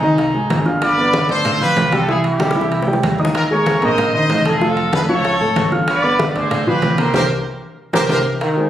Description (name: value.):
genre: latin, salsa.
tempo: 190 BPM.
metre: 4/4.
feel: straight.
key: unclear.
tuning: A4 = 441 Hz.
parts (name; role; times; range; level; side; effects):
brilliant horn section; melody; 0.0-8.2 s; C4 to Eb5; -19 LUFS; equal; none.
dark grand piano; accompaniment; 0.0-8.7 s; Eb3 to F6; -18 LUFS; right 1 dB; none.
upright bass; bass; 0.0-8.2 s; F1 to Eb2; -24 LUFS; equal; none.
bongos; percussion; 0.0-8.7 s; none; -27 LUFS; left 3 dB; none.
congas; percussion; 0.2-8.7 s; none; -23 LUFS; left 1 dB; none.
timbales; percussion; 0.2-8.6 s; none; -27 LUFS; right 4 dB; none.
bright trombone section; second line; 8.4-8.7 s; Eb3; -17 LUFS; equal; none.
room: wet large studio reverb, RT60 1.2 s.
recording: recorded on a phone in the room, studio reverb.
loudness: -14 LUFS.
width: side -11 dB against mid.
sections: 0.0-8.4 A section.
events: drum fill 2.4-3.4, 7.1-8.4; band accent 7.1-8.4.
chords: 0.0 Fm9; 0.8 G7; 2.1 C; 3.4 Eb9sus4; 4.6 Faug; 5.9 G7b9; 7.1 C5.